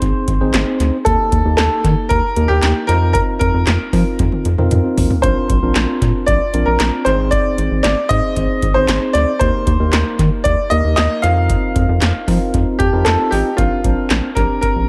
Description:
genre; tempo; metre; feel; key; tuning
synth-pop; 115 BPM; 4/4; straight; unclear; A4 = 440 Hz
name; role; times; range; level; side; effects
clear baby grand piano; melody; 0.0-14.9 s; F4 to F5; -21 LUFS; equal; tape echo
tine electric piano; accompaniment; 0.0-14.9 s; Bb3 to A5; -23 LUFS; equal; tape echo
rubbery square bass; bass; 0.0-14.9 s; Ab1 to F3; -19 LUFS; equal; none
electro analog drum machine; drums; 0.0-14.7 s; handclaps, hi-hat, kick drum, snare drum, toms; -22 LUFS; equal; tape echo
room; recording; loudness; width
moderate spring reverb, RT60 1.6 s, digital ambience; echo-heavy mix; -16 LUFS; mono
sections
0.0-13.6 A section; 13.6-14.9 B section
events
drum fill 4.2-5.2; tine electric piano fill 12.5-13.6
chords
0.0 Ab; 1.1 Eb; 2.9 F7sus4; 5.2 Bbadd9; 7.1 Ab; 9.4 Eb; 11.2 F7sus4; 13.6 Bbadd9

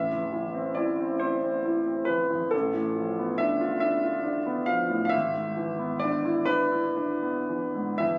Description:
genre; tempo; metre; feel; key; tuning
classical, romantic nocturne for solo piano; 38-47 BPM (dotted quarters); 6/8; rubato; unclear; A4 = 445 Hz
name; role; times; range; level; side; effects
warm concert grand piano; solo; 0.0-8.2 s; G#1 to F5; -27 LUFS; equal; none
room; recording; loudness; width
moderate recital hall reverb, RT60 1.6 s; recorded on a phone in the room, club reverb; -27 LUFS; mono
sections
0.0-8.2 A section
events
none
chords
0.0 Am; 2.5 Bm7b5/A; 5.1 E7/G#

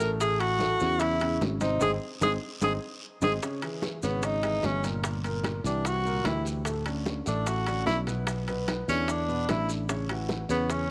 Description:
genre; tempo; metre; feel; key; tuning
Afro-Cuban jazz; 149 BPM; 4/4; straight; unclear; A4 = 440 Hz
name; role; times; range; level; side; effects
breathy tenor saxophone; melody; 0.0-10.9 s; B3 to A#4; -31 LUFS; equal; none
warm concert grand piano; accompaniment; 0.0-10.8 s; A2 to C#5; -36 LUFS; equal; none
sustaining fretless electric bass; bass; 0.0-10.9 s; G1 to E2; -34 LUFS; equal; analog chorus
bongos; percussion; 0.0-10.9 s; none; -40 LUFS; equal; none
congas; percussion; 0.0-10.9 s; none; -42 LUFS; equal; none
guiro; percussion; 0.0-10.9 s; none; -47 LUFS; equal; none
maracas; percussion; 0.0-10.9 s; none; -46 LUFS; equal; none
timbales; percussion; 0.2-10.9 s; none; -40 LUFS; equal; none
room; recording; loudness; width
light reverb, small room reverb; none; -29 LUFS; mono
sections
0.0-3.4 A section; 3.4-10.9 B section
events
band accent 1.8-3.4; drum fill 3.2; tenor saxophone solo 3.4-10.9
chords
0.2 A6; 1.8 G#; 3.4 C#m; 5.0 Gm; 5.9 C9; 6.7 Dmaj7; 8.3 Bm; 9.1 E5; 9.9 A6

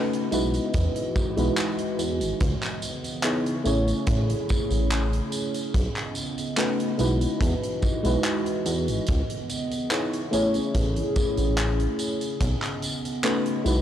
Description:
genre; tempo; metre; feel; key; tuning
vaporwave; 72 BPM; 4/4; swing 53% on 16ths; E major; A4 = 443 Hz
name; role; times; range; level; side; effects
mellow FM electric piano; accompaniment; 0.0-13.8 s; G#3 to C#5; -27 LUFS; equal; analog chorus, tape echo
warbly tape-like pad; sustained chords; 0.0-13.8 s; C#3 to D#5; -31 LUFS; right 1 dB; chorus, built-in reverb
gated 80s drum kit; drums; 0.1-13.8 s; handclaps, hi-hat, tambourine; -32 LUFS; equal; none
chorused synth bass; bass; 0.3-13.8 s; G#1 to E2; -25 LUFS; equal; none
kick drum; drums; 0.7-12.6 s; none; -29 LUFS; equal; none
room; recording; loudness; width
small room reverb; cassette tape; -23 LUFS; side -10 dB against mid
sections
0.0-13.8 A section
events
none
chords
0.0 B9; 0.7 Emaj9; 2.4 C#m9; 3.7 Amaj7; 5.7 B9; 7.4 Emaj9; 9.1 C#m9; 10.3 Amaj7; 12.4 B9

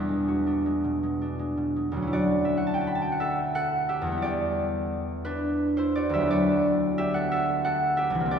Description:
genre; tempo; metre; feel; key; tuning
classical, solo harp piece; 58 BPM (dotted quarters); 6/8; uneven beats, rubato; D major; A4 = 440 Hz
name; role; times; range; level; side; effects
concert harp; solo; 0.0-8.4 s; C2 to B5; -24 LUFS; equal; none
room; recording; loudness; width
wet church reverb, RT60 3.3 s; recorded in a church or concert hall; -24 LUFS; side -7 dB against mid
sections
0.0-2.1 A section; 2.1-8.4 B section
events
none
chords
0.0 E9; 2.1 Dmaj9; 4.2 Em7; 6.3 D69

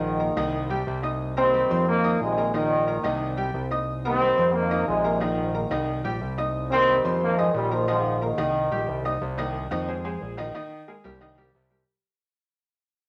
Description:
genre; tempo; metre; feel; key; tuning
latin; 180 BPM; 4/4; straight; C minor; A4 = 436 Hz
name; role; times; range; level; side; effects
mellow trombone section; melody; 0.0-9.0 s; Ab2 to C4; -25 LUFS; equal; none
bright upright piano; accompaniment; 0.0-11.8 s; Eb3 to Eb6; -32 LUFS; equal; none
fat analog bass; bass; 0.0-11.8 s; Bb1 to F2; -31 LUFS; equal; none
room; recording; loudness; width
wet studio reverb, RT60 0.6 s; none; -25 LUFS; mono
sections
0.0-9.2 A section; 9.2-11.9 B section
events
fade-out 9.2-11.9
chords
0.0 Bb7sus4; 0.5 Cm7; 1.9 Fm7; 2.5 Bb7sus4; 3.2 Cm7; 4.5 Fm7; 5.2 Bb7sus4; 5.9 Cm7; 7.2 F5; 7.9 Bb7sus4; 8.5 Cm7; 9.2 Cm; 9.9 Fm7; 10.5 Bb7sus4; 11.2 Cm7

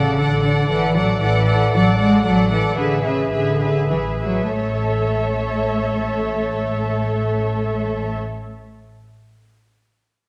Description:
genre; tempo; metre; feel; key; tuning
quick classical-period movement for string orchestra; 94-116 BPM; 3/4; rubato; A major; A4 = 436 Hz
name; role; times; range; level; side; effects
muted chamber violin section; melody; 0.0-8.2 s; E5 to F#5; -29 LUFS; equal; none
muted chamber violin section; second line; 0.0-8.2 s; B4 to D5; -28 LUFS; equal; none
muted symphonic viola section; accompaniment; 0.0-8.2 s; G#4 to A4; -28 LUFS; equal; none
muted chamber cello section; bass; 0.0-8.2 s; C#3 to A3; -23 LUFS; equal; none
muted chamber double bass section; bass; 0.0-8.2 s; A1; -26 LUFS; equal; none
room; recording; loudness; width
moderate scoring stage reverb, RT60 1.5 s; none; -19 LUFS; mono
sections
0.0-4.5 A section; 4.5-8.1 B section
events
slowing down 0.4-4.5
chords
0.0 D/A; 4.5 A

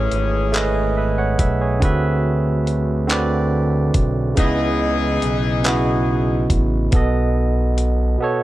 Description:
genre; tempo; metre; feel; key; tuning
slow six-eight R&B; 47 BPM (dotted quarters); 6/8; straight; unclear; A4 = 438 Hz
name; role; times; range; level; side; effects
barky tine electric piano; accompaniment; 0.0-8.4 s; B2 to F#5; -20 LUFS; right 2 dB; overdrive
warm horn section; stabs; 0.0-6.5 s; E3 to G#4; -24 LUFS; left 6 dB; none
smooth gliding synth bass; bass; 0.0-8.2 s; G#1 to D2; -20 LUFS; equal; none
dusty soul sampler-style drum kit; drums; 0.1-8.0 s; handclaps, hi-hat, kick drum; -19 LUFS; equal; none
room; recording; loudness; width
little or no reverb; none; -16 LUFS; side -15 dB against mid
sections
0.0-8.4 A section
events
silent gap 8.2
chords
0.0 Amaj9; 1.8 D13; 4.4 C#m9; 6.9 B7

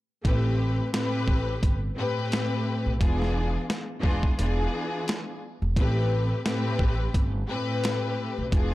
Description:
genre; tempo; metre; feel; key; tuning
hip hop, boom-bap hip-hop; 87 BPM; 4/4; swing 56% on 16ths; A minor; A4 = 444 Hz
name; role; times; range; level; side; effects
boom bap sampler-style drum kit; drums; 0.2-8.7 s; hi-hat, kick drum, snare drum; -26 LUFS; equal; none
warm studio string section; accompaniment; 0.3-8.7 s; A2 to B4; -27 LUFS; left 1 dB; cassette tape
upright bass; bass; 0.3-8.7 s; E1 to B1; -28 LUFS; equal; none
room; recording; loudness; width
small room ambience; dark, warm production; -24 LUFS; side -17 dB against mid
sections
0.0-8.7 A section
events
break 0.0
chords
0.2 Am9; 3.0 E7b9; 5.8 Am9

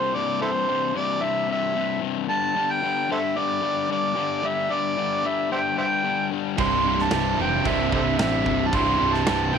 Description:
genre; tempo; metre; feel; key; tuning
classic rock; 112 BPM; 4/4; straight; C major; A4 = 440 Hz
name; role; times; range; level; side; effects
overdriven harmonica; melody; 0.0-9.6 s; E4 to C6; -24 LUFS; right 2 dB; none
distorted electric guitar; riff; 0.0-9.6 s; C2 to G3; -27 LUFS; left 13 dB; distortion
clear grand piano; accompaniment; 6.6-9.6 s; C4 to C5; -34 LUFS; right 12 dB; none
cranked stack guitar; riff; 6.6-9.6 s; C2 to C3; -28 LUFS; right 14 dB; overdrive
crunchy overdriven guitar; riff; 6.6-9.6 s; C2 to E4; -27 LUFS; right 2 dB; none
fuzz fingered electric bass; bass; 6.6-9.6 s; C1 to A1; -29 LUFS; right 1 dB; overdrive
big rock drum kit; drums; 6.6-9.4 s; crash cymbal, kick drum, snare drum; -29 LUFS; right 1 dB; none
room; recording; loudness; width
light reverb, small room ambience; 1960s-style stereo with parts hard left and right; -21 LUFS; side -7 dB against mid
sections
0.0-9.6 A section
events
none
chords
0.0 C; 2.3 G5; 6.6 C

